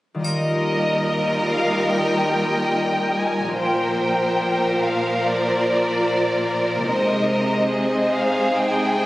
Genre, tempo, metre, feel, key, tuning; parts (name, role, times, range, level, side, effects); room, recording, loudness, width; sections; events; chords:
cinematic, emotional film score for orchestra; 72 BPM; 4/4; rubato; Eb major; A4 = 440 Hz
concert harp; arpeggios; 0.1-9.1 s; Bb2 to C5; -30 LUFS; left 1 dB
warm studio violin section; melody; 0.2-9.1 s; D5 to Ab5; -24 LUFS; equal
clear studio violin section; second line; 0.2-9.1 s; Ab4 to Eb5; -22 LUFS; equal
dark studio viola section; accompaniment; 0.2-9.1 s; F3 to F4; -25 LUFS; equal
rich studio cello section; bass; 0.2-9.1 s; Eb2 to C3; -27 LUFS; right 1 dB
triangle; percussion; 0.2-1.9 s; -34 LUFS; equal
moderate concert hall reverb, RT60 2.2 s; recorded on a phone in the room, club reverb; -18 LUFS; side -17 dB against mid
0.2-9.1 A section
0.2 Ebadd9; 3.6 Bbadd9; 6.9 Ab/C